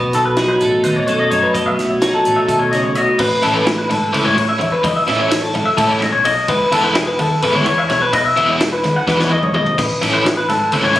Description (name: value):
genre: math rock and midwest emo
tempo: 255 BPM (eighths)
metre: 7/8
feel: straight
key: unclear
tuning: A4 = 439 Hz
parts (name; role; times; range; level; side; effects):
- twelve-string electric guitar; accompaniment; 0.0-4.8 s; F#2 to A4; -18 LUFS; right 1 dB; lush chorus
- electric guitar through a small old amp; arpeggios; 0.0-11.0 s; G#4 to F#5; -16 LUFS; left 2 dB; none
- compact cocktail drum kit; drums; 0.1-11.0 s; crash cymbal, hi-hat, kick drum, ride cymbal, snare drum, toms; -21 LUFS; equal; none
- hollow-body short-scale fingered electric bass; bass; 0.2-11.0 s; E1 to B2; -23 LUFS; equal; none
- biting overdriven guitar; riff; 3.2-11.0 s; E3 to E4; -18 LUFS; equal; tremolo
room: light reverb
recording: recorded on a phone in the room, studio reverb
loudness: -13 LUFS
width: side -14 dB against mid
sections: 0.0-3.2 A section; 3.2-11.0 B section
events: drum fill 9.1-9.8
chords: 0.0 B9; 3.2 Amaj9; 6.5 Emaj7; 9.8 Amaj9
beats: 0.14 0.38 0.61 0.85 1.08 1.32 | 1.55 1.79 2.02 2.26 2.49 2.73 2.96 | 3.20 3.43 3.67 3.90 4.14 4.37 4.61 | 4.84 5.08 5.31 5.55 5.78 6.02 6.25 | 6.49 6.72 6.96 7.19 7.43 7.66 7.90 | 8.13 8.37 8.60 8.84 9.07 9.31 9.54 | 9.78 10.02 10.25 10.48 10.72 10.96